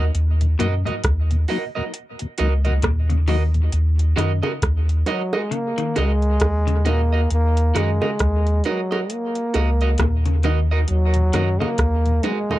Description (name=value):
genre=dub reggae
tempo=67 BPM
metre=4/4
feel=swing 59% on 16ths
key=Eb minor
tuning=A4 = 440 Hz
part: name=electric guitar at the edge of break-up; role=accompaniment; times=0.0-12.6 s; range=Gb4 to Eb5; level=-28 LUFS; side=right 5 dB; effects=wide subtle chorus, dub echo
part: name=mellow tonewheel organ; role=accompaniment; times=0.0-3.6, 11.2-12.6 s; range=Eb2 to Eb4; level=-30 LUFS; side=left 2 dB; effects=slow rotary speaker, dub echo
part: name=warm sub bass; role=bass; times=0.0-12.2 s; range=Db2 to Gb2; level=-18 LUFS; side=equal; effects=tube saturation
part: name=soft vintage rhythm box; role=drums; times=0.1-12.5 s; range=hi-hat, kick drum, rim click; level=-23 LUFS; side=equal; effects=none
part: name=semi-hollow electric guitar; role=arpeggios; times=0.6-11.8 s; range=Ab2 to Eb3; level=-29 LUFS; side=left 6 dB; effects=dub echo
part: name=bongos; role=percussion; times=4.2-12.6 s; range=none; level=-29 LUFS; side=right 3 dB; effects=dub echo
part: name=breathy trombone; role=melody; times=5.1-12.6 s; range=Gb3 to Bb3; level=-24 LUFS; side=equal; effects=dub echo
room=little or no reverb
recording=dry, close 1970s-style studio recording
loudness=-18 LUFS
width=side -16 dB against mid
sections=0.0-12.6 A section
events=break 0.0-3.7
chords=0.0 Ebm